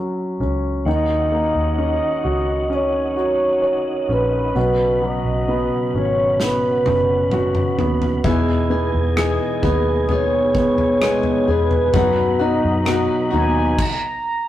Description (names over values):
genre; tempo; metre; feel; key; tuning
pop ballad; 65 BPM; 4/4; straight; B major; A4 = 439 Hz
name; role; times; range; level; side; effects
warm concert grand piano; accompaniment; 0.0-13.8 s; B2 to C#5; -21 LUFS; equal; none
vintage muted fingered electric bass; bass; 0.4-13.8 s; F#1 to F#2; -23 LUFS; equal; none
mellow horn-like synth lead; melody; 0.9-14.5 s; B4 to A#5; -21 LUFS; right 1 dB; chorus
tonewheel organ; sustained chords; 0.9-13.8 s; B2 to G#4; -28 LUFS; equal; chorus vibrato, fast rotary speaker
natural country drum kit; drums; 6.4-14.0 s; crash cymbal, kick drum, rim click, snare drum, toms; -24 LUFS; left 1 dB; none
nylon-string guitar; arpeggios; 8.2-13.8 s; E3 to G#4; -24 LUFS; left 4 dB; none
room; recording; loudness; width
moderate stone room reverb, RT60 1.4 s; rough rehearsal-room recording, tube saturation; -16 LUFS; side -13 dB against mid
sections
0.9-14.5 A section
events
drum fill 6.4-8.2; stop 13.8-14.5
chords
0.0 F#5; 0.9 D#m7; 4.6 Bsus2; 8.2 Emaj7; 11.9 B/F#; 13.8 N.C.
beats
| 0.86 1.78 2.71 3.63 | 4.55 5.48 6.40 7.32 | 8.25 9.17 10.09 11.02 | 11.94 12.86 13.79